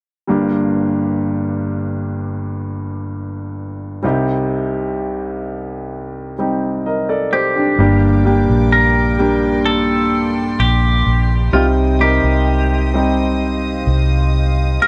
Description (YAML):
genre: pop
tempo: 64 BPM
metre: 4/4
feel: straight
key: G minor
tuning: A4 = 441 Hz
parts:
  - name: clear grand piano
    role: accompaniment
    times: 0.3-14.9 s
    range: G1 to Eb5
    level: -20 LUFS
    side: equal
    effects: none
  - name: twangy electric guitar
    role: melody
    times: 7.3-14.9 s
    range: F4 to Bb4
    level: -21 LUFS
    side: equal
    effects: phaser
  - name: warm studio string section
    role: sustained chords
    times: 7.8-14.9 s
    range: Bb3 to Eb6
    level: -29 LUFS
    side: equal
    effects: none
  - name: vintage muted fingered electric bass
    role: bass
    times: 7.8-14.8 s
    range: G1 to C2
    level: -18 LUFS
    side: equal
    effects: none
room: small room ambience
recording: dry, close 1970s-style studio recording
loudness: -17 LUFS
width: mono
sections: 0.3-7.8 A section; 7.8-14.9 B section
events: none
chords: 0.3 Gm; 4.0 Cm; 7.8 Gm; 11.5 Cm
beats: | 0.29 1.22 2.16 3.10 | 4.04 4.97 5.91 6.85 | 7.79 8.72 9.66 10.60 | 11.54 12.47 13.41 14.35